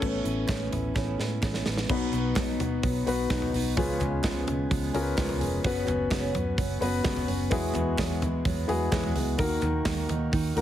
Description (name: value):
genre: piano-driven pop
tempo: 128 BPM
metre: 4/4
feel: straight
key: B major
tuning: A4 = 440 Hz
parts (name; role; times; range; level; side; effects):
- dark baby grand piano; accompaniment; 0.0-10.6 s; B2 to B4; -29 LUFS; left 4 dB; none
- fingerpicked steel-string acoustic guitar; riff; 0.0-10.6 s; E2 to G#4; -33 LUFS; right 5 dB; none
- vintage muted fingered electric bass; bass; 0.0-10.6 s; E#1 to E3; -32 LUFS; right 1 dB; none
- modern studio drum kit; drums; 0.0-10.6 s; crash cymbal, hi-hat, kick drum, snare drum, toms; -30 LUFS; right 1 dB; none
- group handclap; percussion; 0.5-10.0 s; none; -44 LUFS; right 4 dB; none
room: light reverb, small room ambience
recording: heavily compressed radio sound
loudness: -25 LUFS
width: side -11 dB against mid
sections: 0.0-1.9 A section; 1.9-10.6 B section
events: grand piano solo 0.0-1.9; drum fill 1.0-1.9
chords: 0.0 Aadd9; 1.9 B; 3.8 C#7; 5.6 F#sus4; 7.5 Eadd9; 9.4 D#m